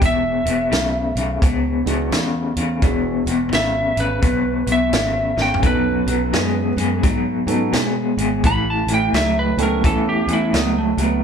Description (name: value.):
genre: electric blues shuffle.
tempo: 86 BPM.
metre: 4/4.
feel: swing 63% on 8ths.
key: E major.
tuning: A4 = 440 Hz.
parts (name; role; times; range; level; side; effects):
lightly driven lead guitar; melody; 0.0-11.2 s; A3 to B5; -22 LUFS; right 1 dB; none.
electric guitar through a small old amp; riff; 0.0-11.2 s; E2 to G#3; -20 LUFS; left 2 dB; tremolo.
fingered electric bass; bass; 0.0-11.2 s; E1 to B2; -24 LUFS; equal; none.
vintage drum kit; drums; 0.0-11.1 s; hi-hat, kick drum, snare drum, toms; -22 LUFS; equal; none.
dark upright piano; accompaniment; 1.8-10.5 s; B3 to G5; -25 LUFS; right 6 dB; none.
room: moderate large studio reverb, RT60 0.9 s.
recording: band playing live in one room.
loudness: -16 LUFS.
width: side -7 dB against mid.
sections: 0.0-11.2 A section.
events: lead electric guitar solo 0.0-11.2; drum fill 5.3-5.6.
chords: 0.0 E; 5.6 B9; 8.4 A9.